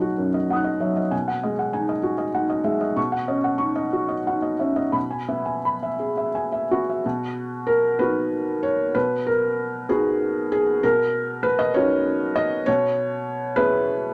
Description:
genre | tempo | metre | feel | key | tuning
neoclassical minimalist piano | 56-66 BPM (dotted quarters) | 6/8 | rubato | B major | A4 = 441 Hz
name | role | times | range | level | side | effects
felt-muted upright piano | solo | 0.0-14.1 s | F#2 to F#6 | -23 LUFS | equal | none
room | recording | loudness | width
moderate studio reverb, RT60 0.8 s | none | -23 LUFS | mono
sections
0.0-7.0 A section; 7.0-14.1 B section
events
none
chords
0.0 B; 1.1 G#m7/B; 3.0 D#m7/B; 5.0 E/B; 7.0 B; 10.8 D#m7/B; 12.7 E/B

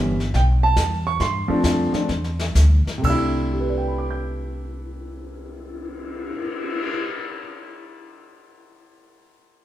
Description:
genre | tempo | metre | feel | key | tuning
jazz piano trio | 122-144 BPM | 4/4 | swing 66% on 8ths | C major | A4 = 440 Hz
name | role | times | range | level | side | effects
warm baby grand piano | melody | 0.0-7.4 s | C3 to G6 | -22 LUFS | right 1 dB | none
upright bass | bass | 0.0-6.3 s | G1 to G2 | -21 LUFS | equal | none
jazz brush drum kit | drums | 0.2-6.9 s | brushed snare drum, crash cymbal, cymbal swell, hi-hat, kick drum, snare drum | -29 LUFS | left 2 dB | none
room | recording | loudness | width
moderate large studio reverb, RT60 1.2 s | band playing live in one room | -19 LUFS | side -13 dB against mid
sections
0.0-3.0 A section; 3.0-7.0 B section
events
slowing down 0.0-3.0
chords
0.0 A9; 1.2 G7sus4; 3.0 C69

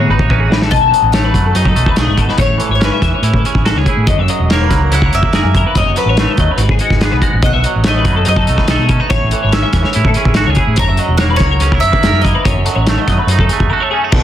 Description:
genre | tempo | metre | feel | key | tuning
math rock and midwest emo | 143 BPM | 4/4 | straight | A lydian | A4 = 439 Hz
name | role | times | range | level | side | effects
twangy electric guitar | accompaniment | 0.0-14.2 s | F#2 to A#4 | -19 LUFS | right 8 dB | plate reverb
twelve-string electric guitar | arpeggios | 0.0-14.2 s | F#4 to E5 | -20 LUFS | left 6 dB | ensemble chorus, plate reverb, digital delay
picked electric bass | bass | 0.0-14.2 s | E1 to B2 | -15 LUFS | equal | none
loose indie drum kit | drums | 0.2-14.2 s | crash cymbal, hi-hat, kick drum, snare drum | -15 LUFS | equal | none
bowl-back mandolin | melody | 0.7-13.7 s | A#4 to A#5 | -18 LUFS | left 4 dB | plate reverb, digital delay
room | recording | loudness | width
light reverb | dense, heavily limited modern master | -10 LUFS | side -11 dB against mid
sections
0.7-14.1 A section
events
drum fill 0.0-0.7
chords
0.0 Amaj9#11; 2.4 Amaj7; 4.1 F#7; 5.7 B7/F#; 6.6 G#m7; 7.4 B7; 9.1 Amaj7; 10.8 F#7; 12.5 B7/F#

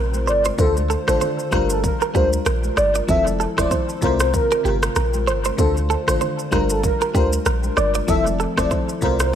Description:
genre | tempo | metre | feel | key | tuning
afrobeats | 96 BPM | 4/4 | swing 58% on 16ths | unclear | A4 = 440 Hz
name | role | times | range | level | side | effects
FM electric piano with soft pad layer | accompaniment | 0.0-9.3 s | C3 to C5 | -24 LUFS | left 3 dB | chorus
direct-recorded clean electric guitar | riff | 0.0-8.9 s | G4 to D5 | -26 LUFS | right 6 dB | analog chorus, dub echo
warm 808-style bass | bass | 0.0-9.3 s | E1 to D2 | -23 LUFS | equal | none
deep house drum kit | drums | 0.1-9.3 s | kick drum, rim click, shaker | -24 LUFS | equal | dub echo
congas | percussion | 0.1-9.2 s | none | -32 LUFS | right 1 dB | dub echo
warm velvety synth lead | melody | 0.3-9.3 s | A4 to E5 | -23 LUFS | equal | chorus, dub echo
room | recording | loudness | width
light reverb, digital ambience | echo-heavy mix | -17 LUFS | side -9 dB against mid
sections
0.0-9.3 A section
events
none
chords
0.0 C7sus4; 0.6 Dm7; 1.5 Gm7; 3.1 Fmaj7; 4.0 C7sus4; 5.6 Dm7; 6.5 Gm7; 8.1 Fmaj7

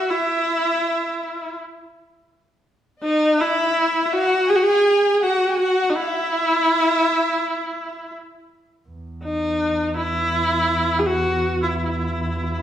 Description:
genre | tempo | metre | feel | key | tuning
Arabic maqam ensemble | 82 BPM | 4/4 | straight | unclear | A4 = 444 Hz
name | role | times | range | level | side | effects
warm viola | melody | 0.0-12.6 s | D4+43c to G#4-42c | -19 LUFS | equal | none
dark symphonic violin section | second line | 0.0-8.1 s | D5+50c to G#5-50c | -26 LUFS | left 2 dB | none
warm double bass | drone | 8.9-12.6 s | E2 | -26 LUFS | right 1 dB | none
room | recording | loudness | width
wet recital hall reverb, RT60 1.3 s | recorded in a church or concert hall | -18 LUFS | side -10 dB against mid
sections
0.0-8.9 A section; 8.9-12.6 B section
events
none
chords
none

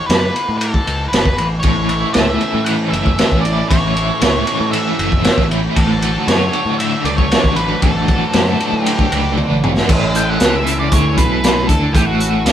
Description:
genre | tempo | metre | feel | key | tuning
psychedelic rock | 116 BPM | 4/4 | straight | A major | A4 = 439 Hz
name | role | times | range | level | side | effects
octave-fuzz lead guitar | melody | 0.0-12.5 s | F#4 to G5 | -21 LUFS | equal | distortion
overdriven picked electric bass | bass | 0.1-12.5 s | F#1 to A2 | -20 LUFS | equal | none
crunchy breakbeat drum kit | drums | 0.1-12.5 s | crash cymbal, hi-hat, kick drum, ride cymbal, snare drum, toms | -16 LUFS | equal | none
hand-pumped harmonium | sustained chords | 1.6-12.5 s | E3 to B4 | -26 LUFS | right 2 dB | none
biting overdriven guitar | riff | 1.6-12.5 s | A2 to F#4 | -19 LUFS | equal | tremolo
room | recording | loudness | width
light reverb | band playing live in one room | -13 LUFS | side -10 dB against mid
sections
0.0-9.9 A section; 9.9-12.5 B section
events
drum fill 9.4-9.9; lead electric guitar solo 9.9-12.5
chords
0.0 A; 5.8 D/A; 9.9 A

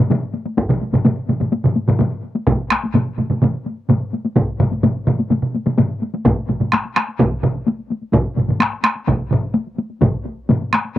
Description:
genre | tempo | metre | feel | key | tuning
japanese traditional, taiko drum ensemble | 127 BPM | 4/4 | straight | none | none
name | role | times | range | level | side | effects
solo taiko drums | percussion | 0.1-10.8 s | none | -19 LUFS | right 3 dB | none
taiko ensemble | percussion | 0.1-11.0 s | none | -20 LUFS | left 2 dB | none
taiko ensemble | percussion | 0.1-10.8 s | none | -21 LUFS | left 3 dB | none
taiko ensemble | percussion | 0.6-11.0 s | none | -22 LUFS | right 1 dB | none
room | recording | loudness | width
little or no reverb | recorded outdoors, with no room sound | -16 LUFS | side -14 dB against mid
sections
0.0-6.3 A section; 6.3-11.0 B section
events
none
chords
none

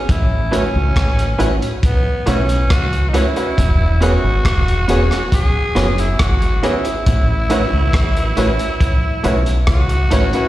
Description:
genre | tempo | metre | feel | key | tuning
lovers rock reggae | 69 BPM | 4/4 | straight | unclear | A4 = 436 Hz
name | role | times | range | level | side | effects
growling tenor saxophone | melody | 0.0-10.5 s | B3 to G#4 | -22 LUFS | equal | tape echo, slapback echo
deep dub fingered electric bass | bass | 0.1-10.3 s | E1 to C#2 | -16 LUFS | equal | none
crunchy breakbeat drum kit | drums | 0.1-10.5 s | hi-hat, kick drum, rim click | -19 LUFS | equal | none
clear grand piano | accompaniment | 0.5-10.5 s | C#4 to B4 | -24 LUFS | left 2 dB | slapback echo
electric guitar through a small old amp | stabs | 0.5-10.4 s | A3 to C#5 | -23 LUFS | right 3 dB | slapback echo
room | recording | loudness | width
light reverb, studio ambience | live gig heard through the venue's PA, recital hall reverb | -13 LUFS | side -15 dB against mid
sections
0.0-10.5 A section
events
none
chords
0.1 A6; 3.6 E69; 7.1 A6

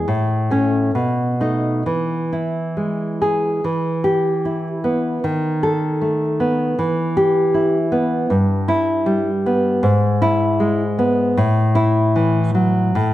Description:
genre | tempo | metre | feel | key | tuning
romantic piece for solo classical guitar | 64-80 BPM | 2/4 | rubato | E major, E minor from 3.6 s | A4 = 439 Hz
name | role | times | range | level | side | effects
nylon-string guitar | solo | 0.0-13.1 s | G2 to A4 | -16 LUFS | equal | none
room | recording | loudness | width
light reverb | none | -16 LUFS | side -14 dB against mid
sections
0.0-3.6 A section; 3.6-13.1 B section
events
none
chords
0.1 A; 0.9 B7; 1.8 E; 3.6 Em; 5.2 B7/D#; 6.8 Em; 8.3 Em/G; 9.8 E/G#; 11.4 F#m7/A

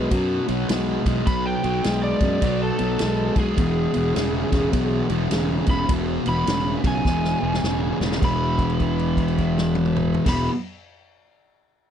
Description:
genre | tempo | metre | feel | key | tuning
blues rock power trio and southern rock | 104 BPM | 4/4 | swing 63% on 8ths | E major | A4 = 441 Hz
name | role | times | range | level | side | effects
overdriven slide guitar | melody | 0.0-10.5 s | G#4 to B5 | -27 LUFS | equal | slapback echo
fuzz guitar | riff | 0.0-10.5 s | E2 to G#3 | -23 LUFS | left 1 dB | distortion
fuzz fingered electric bass | bass | 0.0-10.5 s | E1 to F#2 | -26 LUFS | right 1 dB | overdrive
vintage drum kit | drums | 0.1-10.4 s | crash cymbal, kick drum, ride cymbal, snare drum, toms | -26 LUFS | equal | none
room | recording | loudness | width
little or no reverb | dry, close 1970s-style studio recording | -19 LUFS | side -9 dB against mid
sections
0.0-8.2 A section; 8.2-10.6 B section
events
drum fill 7.1-8.2; held note 8.2-10.2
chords
0.0 B5; 3.6 E; 8.2 E5

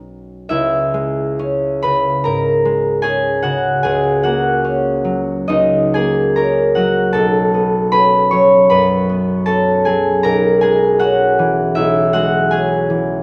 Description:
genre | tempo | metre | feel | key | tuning
classical | 63-81 BPM | 4/4 | rubato | C# dorian | A4 = 441 Hz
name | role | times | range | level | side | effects
concert harp | accompaniment | 0.0-13.2 s | B1 to C#6 | -15 LUFS | equal | none
room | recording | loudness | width
light reverb | none | -15 LUFS | mono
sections
0.5-13.2 A section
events
none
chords
0.0 Badd9; 0.5 C#m; 3.8 D#m7/C#; 7.1 B9; 10.2 C#m6/B

